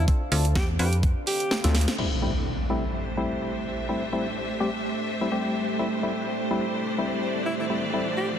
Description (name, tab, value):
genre	bass house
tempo	126 BPM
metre	4/4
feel	swing 56% on 16ths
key	A minor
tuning	A4 = 439 Hz
part	breathy alto saxophone	melody	0.0-1.6, 7.5-8.3 s	E4 to G4	-32 LUFS	equal	dub echo
part	deep dark ambient pad	sustained chords	0.0-8.4 s	A3 to G5	-33 LUFS	right 1 dB	chorus, built-in reverb, sidechain pumping
part	percussive organ stab	stabs	0.0-8.1 s	G3 to B4	-29 LUFS	left 2 dB	chorus, sidechain pumping, dub echo
part	metallic FM bass	bass	0.0-1.1 s	D2 to F2	-23 LUFS	equal	sidechain pumping
part	electronic kick drum	drums	0.1-1.1 s	none	-23 LUFS	equal	overdrive
part	house drum kit	drums	0.1-2.1 s	crash cymbal, hi-hat, snare drum	-29 LUFS	right 1 dB	low-pass filter on hats, low-pass filter on snare, low-pass filter on cymbals, low-pass filter on room
part	wobble bass	bass	1.6-1.9 s	D2	-21 LUFS	equal	chorus, tube saturation, sidechain pumping
part	impact and riser	sound effects	2.0-8.4 s	none	-32 LUFS	equal	none
part	clear studio string section	texture	2.0-8.4 s	A3 to E5	-31 LUFS	equal	sidechain pumping
room	wet lush hall reverb, RT60 1.9 s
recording	dense, heavily limited modern master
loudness	-24 LUFS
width	side -9 dB against mid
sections	0.0-2.0 A section; 2.0-8.4 B section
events	drop 0.0-2.0; kick drops out 1.5-2.0; drum fill 1.6-2.0; band accent 1.9; impact 2.0-3.9; riser 6.8-8.4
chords	0.0 Dm7; 2.0 Am7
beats	| 0.08 0.56 1.03 1.51 | 1.98 2.46 2.94 3.41 | 3.89 4.37 4.84 5.32 | 5.79 6.27 6.75 7.22 | 7.70 8.17